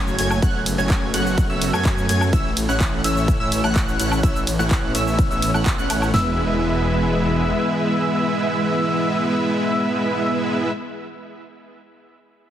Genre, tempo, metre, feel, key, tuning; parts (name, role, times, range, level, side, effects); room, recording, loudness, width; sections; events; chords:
EDM, festival progressive house; 126 BPM; 4/4; straight; E major; A4 = 440 Hz
lush unison pad; sustained chords; 0.0-10.7 s; E3 to B4; -27 LUFS; left 1 dB; chorus, sidechain pumping
plucky unison lead; arpeggios; 0.0-10.7 s; E6 to G#6; -27 LUFS; equal; lush chorus, sidechain pumping, tape echo
dense compressed supersaw; riff; 0.0-10.7 s; G#3 to G#5; -22 LUFS; right 1 dB; sidechain pumping, tape echo
wide detuned saw bass; bass; 0.0-7.5 s; E1 to F#2; -24 LUFS; equal; chorus, tube saturation, sidechain pumping
big-room dance drum kit; drums; 0.1-6.1 s; cabasa, handclaps, hi-hat, ride cymbal, woodblock; -27 LUFS; equal
big-room dance drum kit; drums; 0.4-6.2 s; kick drum, snare drum, toms; -21 LUFS; equal
light reverb; heavily compressed radio sound; -18 LUFS; side -10 dB against mid
0.0-6.1 A section; 6.1-9.9 B section
drop 0.0-6.1
0.0 F#m; 2.3 A; 6.1 E